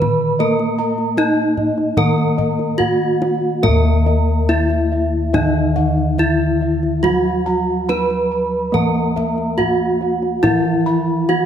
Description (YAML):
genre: Javanese gamelan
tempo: 70 BPM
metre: 4/4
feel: straight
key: Eb pelog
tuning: A4 = 439 Hz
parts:
  - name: gamelan-type bronze metallophone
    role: melody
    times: 0.0-11.5 s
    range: Eb4 to Cb5-20c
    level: -19 LUFS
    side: equal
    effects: none
  - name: gamelan-type bronze metallophone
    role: accompaniment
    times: 0.0-11.5 s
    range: Eb3 to Bb3-30c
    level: -22 LUFS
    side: right 2 dB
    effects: none
  - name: gamelan-type bossed gongs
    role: arpeggios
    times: 0.0-11.5 s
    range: Eb5 to Cb6-20c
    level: -26 LUFS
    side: left 3 dB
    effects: tape echo
  - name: gamelan-type bronze metallophone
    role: arpeggios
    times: 0.0-11.5 s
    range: Eb5 to Cb6-20c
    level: -26 LUFS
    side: right 5 dB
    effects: none
  - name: gamelan-type bossed gongs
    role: bass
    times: 0.0-11.4 s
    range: Eb2 to Bb4-30c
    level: -21 LUFS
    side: left 2 dB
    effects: none
  - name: kendang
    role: percussion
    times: 0.0-11.5 s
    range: none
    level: -25 LUFS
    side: left 2 dB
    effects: none
room: moderate scoring stage reverb, RT60 1.5 s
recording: none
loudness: -15 LUFS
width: side -9 dB against mid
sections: 0.0-3.6 A section; 3.6-11.5 B section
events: none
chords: none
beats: | 0.40 1.18 1.98 2.79 | 3.63 4.48 5.33 6.18 | 7.04 7.89 8.74 9.59 | 10.44 11.29